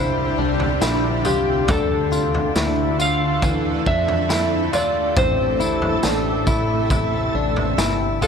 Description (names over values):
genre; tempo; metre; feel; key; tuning
dream pop; 69 BPM; 4/4; straight; unclear; A4 = 438 Hz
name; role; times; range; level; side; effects
electric slide guitar; melody; 0.0-8.3 s; G4 to F5; -24 LUFS; left 1 dB; tape echo
shimmering ambient pad; sustained chords; 0.0-8.3 s; C3 to E5; -24 LUFS; right 2 dB; chorus, built-in reverb
direct-recorded clean electric guitar; arpeggios; 0.0-8.3 s; E3 to F4; -24 LUFS; left 5 dB; lush chorus, tape echo
fat analog bass; bass; 0.0-8.3 s; G1 to F2; -24 LUFS; equal; none
raw garage drum kit; drums; 0.6-8.3 s; kick drum, snare drum, tambourine, toms; -24 LUFS; equal; none
backwards swelling texture; texture; 4.5-8.3 s; A4; -32 LUFS; right 2 dB; built-in reverb, tape echo
room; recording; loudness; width
light reverb, studio ambience; none; -17 LUFS; side -6 dB against mid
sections
0.0-8.3 A section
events
none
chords
0.0 Cadd9; 1.7 Dm; 5.2 Am